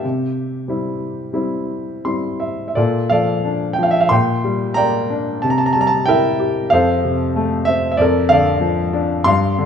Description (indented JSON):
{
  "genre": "classical, lyrical solo piano",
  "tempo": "80-96 BPM",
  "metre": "4/4",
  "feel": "rubato",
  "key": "Bb lydian",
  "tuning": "A4 = 437 Hz",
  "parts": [
    { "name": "clear grand piano", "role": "solo", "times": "0.0-9.7 s", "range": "F2 to C6", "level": "-15 LUFS", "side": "equal", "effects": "none" }
  ],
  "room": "moderate recital hall reverb, RT60 1.5 s",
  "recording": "minimal, uncompressed stereo recording",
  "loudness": "-15 LUFS",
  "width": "side -7 dB against mid",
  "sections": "0.0-2.8 A section; 2.8-9.7 B section",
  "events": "grand piano fill 1.7-2.8",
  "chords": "0.0 C; 2.8 Bbmaj7; 4.1 Gm/Bb; 5.4 C7; 6.7 F; 8.0 Bbmaj7/F"
}